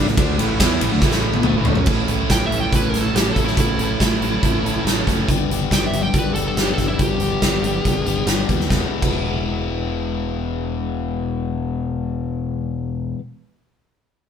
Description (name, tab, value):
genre	classic rock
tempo	140 BPM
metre	4/4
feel	straight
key	unclear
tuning	A4 = 440 Hz
part	bright tonewheel organ	sustained chords	0.0-1.8 s	A3 to E5	-34 LUFS	right 2 dB	none
part	crunchy overdriven guitar	riff	0.0-13.2 s	E2 to A4	-23 LUFS	left 5 dB	none
part	distorted electric guitar	riff	0.0-5.3 s	A2 to A4	-26 LUFS	right 9 dB	overdrive
part	growling fingered electric bass	bass	0.0-13.1 s	E1 to F#2	-25 LUFS	right 1 dB	overdrive
part	big rock drum kit	drums	0.1-9.1 s	crash cymbal, hi-hat, kick drum, ride cymbal, snare drum, toms	-20 LUFS	equal	none
part	fuzz lead guitar	melody	2.3-8.3 s	E4 to G5	-25 LUFS	right 2 dB	distortion
room	moderate studio reverb, RT60 0.8 s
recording	band playing live in one room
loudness	-17 LUFS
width	side -8 dB against mid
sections	0.0-1.9 A section; 1.9-8.7 B section; 8.7-12.1 C section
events	drum fill 1.0-1.9; lead electric guitar solo 1.9-8.7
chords	0.0 A5; 1.9 A; 5.3 G; 8.7 E